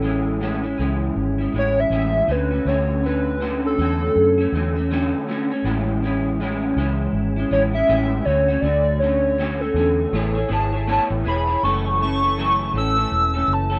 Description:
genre	indie pop, bedroom pop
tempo	80 BPM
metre	4/4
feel	swing 60% on 16ths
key	A major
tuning	A4 = 438 Hz
part	warbly nostalgic lead	melody	0.0-13.8 s	A4 to E6	-23 LUFS	equal	analog chorus, analog delay
part	electric guitar through a small old amp	accompaniment	0.0-13.8 s	F#2 to C#5	-25 LUFS	equal	analog chorus, vibrato effect
part	vintage muted fingered electric bass	bass	0.0-13.8 s	E1 to F#2	-26 LUFS	equal	none
room	light reverb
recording	rough home demo mix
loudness	-21 LUFS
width	mono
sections	0.0-11.6 A section; 11.6-13.8 B section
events	soft synth lead solo 0.0-11.6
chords	0.0 Amaj7; 2.3 Dmaj7; 5.6 Amaj7; 8.3 Dmaj7; 10.1 Amaj9; 11.6 F#m7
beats	0.42 1.17 1.92 | 2.66 3.41 4.15 4.90 | 5.65 6.39 7.14 7.89 | 8.63 9.38 10.13 10.88 | 11.62 12.37 13.12

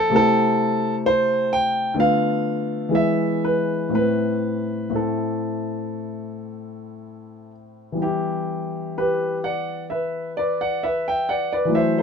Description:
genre	classical, baroque-style suite movement for grand piano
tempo	58-66 BPM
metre	4/4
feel	rubato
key	A minor, E minor from 8.0 s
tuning	A4 = 440 Hz
part	warm concert grand piano	solo	0.0-12.0 s	A2 to G5	-20 LUFS	equal	none
room	light reverb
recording	minimal, uncompressed stereo recording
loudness	-20 LUFS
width	side -6 dB against mid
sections	0.0-8.0 A section; 8.0-12.0 A section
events	none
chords	0.2 Am/C; 2.0 Bm7b5/D; 3.0 E; 3.9 Am; 8.0 Em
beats	| 0.15 1.07 2.00 2.95 | 3.94 4.95 5.95 6.99 | 8.02 8.97 9.90 10.83 | 11.75

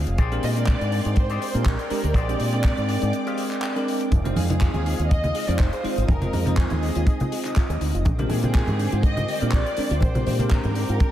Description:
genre	nu-disco, nu disco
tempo	122 BPM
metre	4/4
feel	swing 54% on 16ths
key	unclear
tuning	A4 = 440 Hz
part	bell-like tine electric piano	accompaniment	0.0-11.1 s	D3 to G5	-28 LUFS	equal	wide subtle chorus, sidechain pumping, analog delay
part	lush unison pad	sustained chords	0.0-11.1 s	Ab3 to Eb6	-35 LUFS	equal	chorus, sidechain pumping
part	fingered electric bass with an envelope filter	bass	0.0-11.0 s	F1 to Bb2	-24 LUFS	equal	tube saturation, sidechain pumping
part	electric guitar with an envelope filter	riff	0.1-4.0 s	G4 to F5	-35 LUFS	left 4 dB	wide subtle chorus, analog delay
part	tight funk drum kit	drums	0.1-11.1 s	handclaps, hi-hat	-34 LUFS	left 1 dB	none
part	kick drum	drums	0.2-11.1 s	none	-20 LUFS	equal	none
part	warm studio violin section	melody	0.4-11.1 s	Ab4 to Eb5	-30 LUFS	equal	tape echo
part	soft round pluck	arpeggios	4.1-11.1 s	D4 to Ab4	-34 LUFS	right 3 dB	chorus, sidechain pumping, tape echo
part	congas	percussion	4.1-10.7 s	none	-28 LUFS	right 1 dB	none
room	moderate lush hall reverb, RT60 2.1 s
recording	dreamy mix soaked in reverb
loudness	-20 LUFS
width	side -12 dB against mid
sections	0.0-11.1 A section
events	break 3.1-4.1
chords	0.2 Bb13; 4.1 Fm7; 8.1 Bb13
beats	| 0.18 0.68 1.17 1.66 | 2.15 2.64 3.14 3.63 | 4.12 4.61 5.10 5.59 | 6.09 6.58 7.07 7.56 | 8.05 8.55 9.04 9.53 | 10.02 10.51 11.01

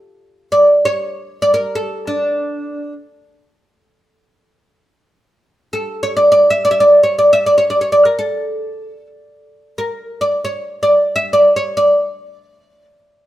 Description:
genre	Arabic maqam ensemble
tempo	free time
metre	none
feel	none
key	unclear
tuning	A4 = 440 Hz
part	oud	solo	0.5-2.9, 5.7-12.8 s	D4 to E5	-12 LUFS	equal	none
room	light reverb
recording	band playing live in one room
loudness	-12 LUFS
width	side -14 dB against mid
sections	0.0-5.4 A section; 5.4-13.3 A section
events	none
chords	none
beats	free time

